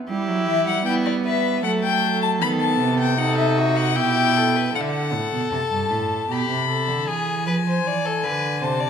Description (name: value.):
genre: classical, baroque-style fugue for string quartet.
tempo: 77 BPM.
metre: 3/4.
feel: straight.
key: E minor.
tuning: A4 = 440 Hz.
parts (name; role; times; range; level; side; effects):
rich violin; second line; 0.1-8.9 s; E4 to D5; -26 LUFS; left 2 dB; none.
warm viola; accompaniment; 0.1-4.7 s; A3 to E4; -24 LUFS; right 3 dB; none.
rich cello; bass; 0.1-8.9 s; G2 to G3; -24 LUFS; right 4 dB; none.
rich violin; melody; 0.5-8.9 s; D5 to B5; -23 LUFS; left 7 dB; none.
room: wet recital hall reverb, RT60 1.5 s.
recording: recorded in a church or concert hall.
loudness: -19 LUFS.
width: side -7 dB against mid.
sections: 0.1-4.7 A section; 4.7-8.9 B section.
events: none.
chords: 0.1 Em; 1.6 F#m; 2.4 B7; 4.0 Em/B; 4.7 D; 6.3 G/B; 7.1 E7.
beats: | 0.08 0.86 1.64 | 2.41 3.18 3.96 | 4.74 5.52 6.30 | 7.08 7.85 8.62.